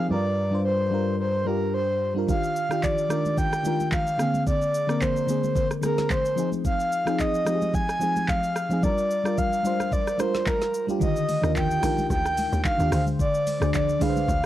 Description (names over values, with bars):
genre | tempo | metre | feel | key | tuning
amapiano | 110 BPM | 4/4 | swing 55% on 16ths | Eb major | A4 = 439 Hz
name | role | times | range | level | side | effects
breathy flute-like synth lead | melody | 0.0-14.5 s | Bb4 to Ab5 | -26 LUFS | equal | chorus, cassette tape
mellow FM electric piano | accompaniment | 0.0-14.5 s | D3 to D5 | -26 LUFS | left 1 dB | chorus, phaser, cassette tape
fingered electric bass with an envelope filter | bass | 0.1-2.2 s | G2 | -29 LUFS | equal | none
afro-pop drum kit | drums | 2.3-14.5 s | handclaps, hi-hat, kick drum, rim click, shaker, snare drum | -28 LUFS | equal | none
congas | percussion | 2.8-14.4 s | none | -36 LUFS | right 1 dB | none
tight log drum bass | bass | 11.4-14.5 s | Bb1 to Eb2 | -28 LUFS | equal | none
room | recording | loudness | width
moderate booth ambience, RT60 0.2 s | home recording on cassette | -22 LUFS | side -13 dB against mid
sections
0.0-11.0 A section; 11.0-14.5 B section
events
drop 11.0-14.5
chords
0.1 Gm7; 2.3 Ebmaj9; 4.2 Bb7/D; 6.4 Fm7; 8.8 Gm7; 11.0 Ebmaj9; 12.9 Bb9 (rootless)